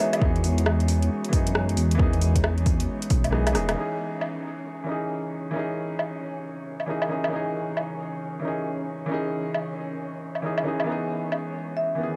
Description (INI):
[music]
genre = future garage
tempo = 135 BPM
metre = 4/4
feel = swing 63% on 16ths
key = C# minor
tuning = A4 = 440 Hz
[part]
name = marimba with medium mallets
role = melody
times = 0.0-0.4, 11.8-12.2 s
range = E5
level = -33 LUFS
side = equal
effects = tape echo
[part]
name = felt-muted upright piano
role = accompaniment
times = 0.0-12.2 s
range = D#3 to G#4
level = -32 LUFS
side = equal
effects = sidechain pumping, tape echo
[part]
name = warbly tape-like pad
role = sustained chords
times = 0.0-12.2 s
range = C#3 to C#5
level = -38 LUFS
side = equal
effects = chorus, built-in reverb, sidechain pumping
[part]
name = wind-like tuned noise texture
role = texture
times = 0.0-12.2 s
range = C#4 to C#5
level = -41 LUFS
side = equal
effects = built-in reverb
[part]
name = deep house drum kit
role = drums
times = 0.1-11.4 s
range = hi-hat, rim click, woodblock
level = -31 LUFS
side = equal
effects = overdrive, studio ambience
[part]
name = dark detuned saw bass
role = bass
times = 0.2-3.8 s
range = E1 to F#2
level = -26 LUFS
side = equal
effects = sidechain pumping
[part]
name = electronic kick drum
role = drums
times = 0.2-3.2 s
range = none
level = -26 LUFS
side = equal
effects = overdrive, studio ambience
[sound]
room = light reverb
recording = none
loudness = -26 LUFS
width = mono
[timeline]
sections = 0.0-3.8 A section; 3.8-12.2 B section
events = kick drops out 3.3-3.8; drum fill 3.3-3.8; band accent 3.7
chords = 0.0 Emaj7; 3.8 C#madd9; 10.9 Emaj7